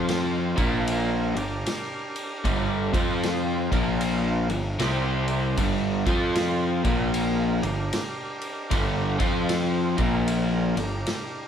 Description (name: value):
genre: blues rock power trio and southern rock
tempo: 76 BPM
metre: 4/4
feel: swing 62% on 8ths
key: G minor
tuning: A4 = 441 Hz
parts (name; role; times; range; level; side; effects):
- overdriven tonewheel organ; sustained chords; 0.0-11.5 s; Bb3 to C5; -34 LUFS; right 2 dB; none
- crunchy overdriven guitar; riff; 0.0-11.0 s; G2 to F4; -25 LUFS; left 1 dB; none
- fuzz picked electric bass; bass; 0.0-11.0 s; G1 to F2; -29 LUFS; equal; overdrive
- vintage drum kit; drums; 0.1-11.3 s; kick drum, ride cymbal, snare drum; -29 LUFS; equal; none
room: wet small room reverb, RT60 0.5 s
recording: band playing live in one room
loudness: -22 LUFS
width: side -8 dB against mid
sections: 0.0-11.5 A section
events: none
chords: 0.5 Bb5; 1.3 Gm; 2.8 F5; 3.6 Bb5; 4.4 G5; 4.8 C5; 5.6 G5; 6.0 F5; 6.8 Bb5; 7.5 Gm; 9.1 F5; 9.9 Bb5; 10.7 Gm